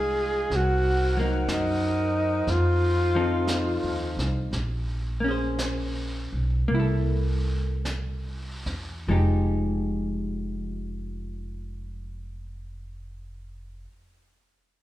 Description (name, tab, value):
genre	jazz ballad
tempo	47-62 BPM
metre	4/4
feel	swing 67% on 8ths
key	F minor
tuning	A4 = 440 Hz
part	mellow alto saxophone	melody	0.0-4.2 s	Eb4 to Ab4	-26 LUFS	equal	none
part	vintage hollow-body jazz guitar	accompaniment	0.0-13.9 s	F3 to C5	-30 LUFS	left 1 dB	none
part	mellow saxophone section	sustained chords	0.0-4.5 s	Eb4 to Gb5	-34 LUFS	left 1 dB	none
part	upright bass	bass	0.0-13.8 s	F1 to Gb2	-28 LUFS	equal	none
part	jazz brush drum kit	drums	0.5-9.7 s	brushed snare drum, hi-hat, snare drum	-37 LUFS	equal	none
room	moderate recital hall reverb, RT60 1.4 s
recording	recorded in a church or concert hall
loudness	-24 LUFS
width	side -14 dB against mid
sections	0.0-4.5 A section; 4.5-9.1 B section; 9.1-14.1 C section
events	slowing down 0.5-9.1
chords	0.0 Fm7; 0.5 Cm7b5; 2.5 F7; 4.5 Bbm9; 6.7 C6; 9.1 Fm9